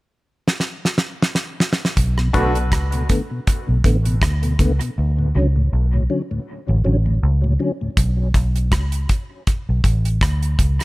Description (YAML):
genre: dub reggae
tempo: 80 BPM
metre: 4/4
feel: swing 56% on 16ths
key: B minor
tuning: A4 = 440 Hz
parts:
  - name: damped 70s drum kit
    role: drums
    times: 0.5-10.8 s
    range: hi-hat, kick drum, rim click, snare drum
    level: -19 LUFS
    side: equal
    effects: none
  - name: vintage muted fingered electric bass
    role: bass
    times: 2.0-10.8 s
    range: A1 to D2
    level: -18 LUFS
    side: equal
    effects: none
  - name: mellow tonewheel organ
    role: accompaniment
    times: 2.2-7.9 s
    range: D2 to C#4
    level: -24 LUFS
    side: left 1 dB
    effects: chorus vibrato, slow rotary speaker, dub echo
  - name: mellow electric guitar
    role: accompaniment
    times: 2.3-2.5 s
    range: A3 to F#4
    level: -28 LUFS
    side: right 2 dB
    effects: dub echo
  - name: percussive organ stab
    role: stabs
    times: 2.3-2.6 s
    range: D4 to B4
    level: -26 LUFS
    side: left 2 dB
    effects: chorus, dub echo
room: small room ambience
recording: none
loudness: -17 LUFS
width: side -20 dB against mid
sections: 0.0-2.0 A section; 2.0-10.8 B section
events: drum fill 0.5-2.0; part muted 5.0-8.0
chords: 0.0 N.C.; 2.0 Bm7